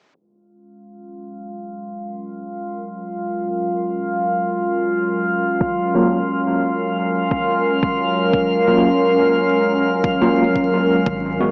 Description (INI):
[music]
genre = ambient dub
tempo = 88 BPM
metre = 4/4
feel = straight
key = unclear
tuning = A4 = 440 Hz
[part]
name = warbly tape-like pad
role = sustained chords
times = 1.1-11.5 s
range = F#3 to A#4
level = -22 LUFS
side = equal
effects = chorus, built-in reverb
[part]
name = drifting glass-harmonics texture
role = texture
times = 1.2-11.5 s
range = E#4 to E#5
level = -25 LUFS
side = equal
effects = chorus, built-in reverb
[part]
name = electronic kick drum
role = drums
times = 5.6-11.2 s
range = none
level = -26 LUFS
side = equal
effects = none
[part]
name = overdriven tine electric piano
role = stabs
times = 5.9-11.5 s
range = F#3 to F#4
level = -24 LUFS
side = equal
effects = medium tremolo, dub echo
[part]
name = soft dub sub bass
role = bass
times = 11.1-11.5 s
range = G#1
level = -30 LUFS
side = equal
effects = none
[sound]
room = moderate huge ambient reverb, RT60 4.4 s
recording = vinyl crackle, low-pass filter, small speaker sound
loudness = -19 LUFS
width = mono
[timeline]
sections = 0.2-11.1 A section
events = fade-in on ambient pad 0.2-11.1; filter sweep 0.2-11.1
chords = 0.2 F#maj9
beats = | 0.15 0.83 1.52 2.20 | 2.88 3.56 4.24 4.92 | 5.61 6.29 6.97 7.65 | 8.34 9.02 9.70 10.38 | 11.06